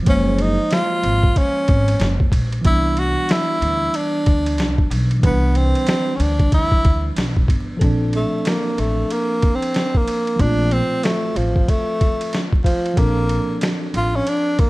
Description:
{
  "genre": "hip hop, jazz-hop",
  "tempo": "93 BPM",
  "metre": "4/4",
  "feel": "swing 62% on 16ths",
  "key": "Bb major",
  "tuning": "A4 = 440 Hz",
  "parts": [
    { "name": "tine electric piano", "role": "accompaniment", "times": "0.0-14.7 s", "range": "E3 to C5", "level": "-25 LUFS", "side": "right 1 dB", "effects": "medium stereo tremolo" },
    { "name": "breathy tenor saxophone", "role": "melody", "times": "0.1-14.7 s", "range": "F3 to Gb4", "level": "-20 LUFS", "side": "equal", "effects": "none" },
    { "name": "upright bass", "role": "bass", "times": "0.1-14.2 s", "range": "Gb1 to D2", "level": "-20 LUFS", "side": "equal", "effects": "none" },
    { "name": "boom bap sampler-style drum kit", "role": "drums", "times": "0.1-14.7 s", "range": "hi-hat, kick drum, ride cymbal, snare drum", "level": "-20 LUFS", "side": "equal", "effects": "none" }
  ],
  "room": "digital ambience",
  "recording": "dark, warm production, vinyl crackle",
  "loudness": "-16 LUFS",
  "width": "side -20 dB against mid",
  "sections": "0.0-7.8 A section; 7.8-14.7 B section",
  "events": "tenor saxophone solo 7.8-14.7",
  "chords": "0.0 Gbmaj9; 2.6 Cmaj9; 7.8 Bbmaj9"
}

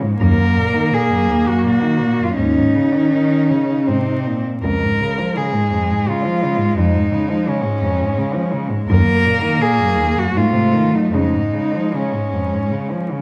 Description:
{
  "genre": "classical, lyrical piece for cello ensemble",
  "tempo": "73-87 BPM",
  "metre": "3/4",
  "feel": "rubato",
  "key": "Db major",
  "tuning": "A4 = 440 Hz",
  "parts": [
    { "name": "clear cello", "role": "second line", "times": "0.0-13.2 s", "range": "Ab3 to Db4", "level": "-22 LUFS", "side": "equal", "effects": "none" },
    { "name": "rich cello", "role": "accompaniment", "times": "0.0-13.2 s", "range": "Eb2 to Gb3", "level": "-22 LUFS", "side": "equal", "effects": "none" },
    { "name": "rich cello", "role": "melody", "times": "0.2-13.1 s", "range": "Db4 to Bb4", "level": "-23 LUFS", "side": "equal", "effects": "none" },
    { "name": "rich cello", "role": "bass", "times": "0.2-11.8 s", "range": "Db2 to Db3", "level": "-22 LUFS", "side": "equal", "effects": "none" }
  ],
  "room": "wet recital hall reverb, RT60 1.3 s",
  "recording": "dark, warm production, vinyl crackle",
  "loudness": "-17 LUFS",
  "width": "mono",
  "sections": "0.0-13.2 A section",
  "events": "none",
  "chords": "0.2 Ebm; 2.4 Absus4/Eb; 3.9 Ab; 4.6 Db; 6.8 Db/F; 8.9 Ebm; 10.4 Ab7b9; 11.1 Db/F"
}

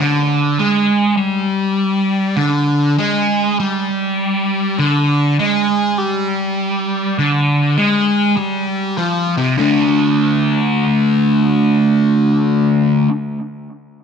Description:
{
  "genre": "rock",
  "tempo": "50 BPM (dotted quarters)",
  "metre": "6/8",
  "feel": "straight",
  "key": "unclear",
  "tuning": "A4 = 435 Hz",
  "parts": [
    { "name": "fuzz guitar", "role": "solo", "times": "0.0-13.1 s", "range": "C3 to D4", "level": "-13 LUFS", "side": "equal", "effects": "distortion, phaser, analog delay" }
  ],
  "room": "moderate studio reverb, RT60 0.8 s",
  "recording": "none",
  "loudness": "-13 LUFS",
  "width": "side -6 dB against mid",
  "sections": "0.0-9.6 A section; 9.6-12.0 B section",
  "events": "none",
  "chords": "0.0 N.C.; 9.6 D5"
}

